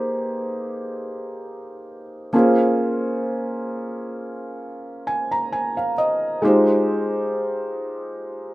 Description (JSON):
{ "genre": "R&B", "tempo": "66 BPM", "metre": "4/4", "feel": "swing 54% on 16ths", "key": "unclear", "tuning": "A4 = 440 Hz", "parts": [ { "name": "felt-muted upright piano", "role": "solo", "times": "0.0-8.5 s", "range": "Ab3 to Bb5", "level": "-21 LUFS", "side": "equal", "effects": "none" } ], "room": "wet studio reverb, RT60 0.6 s", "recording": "rough home demo mix", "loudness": "-20 LUFS", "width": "side -17 dB against mid", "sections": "0.0-8.5 A section", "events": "felt piano fill 4.6-6.4", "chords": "0.0 Abmaj7; 2.3 Bbm7; 6.4 Fm9/Ab" }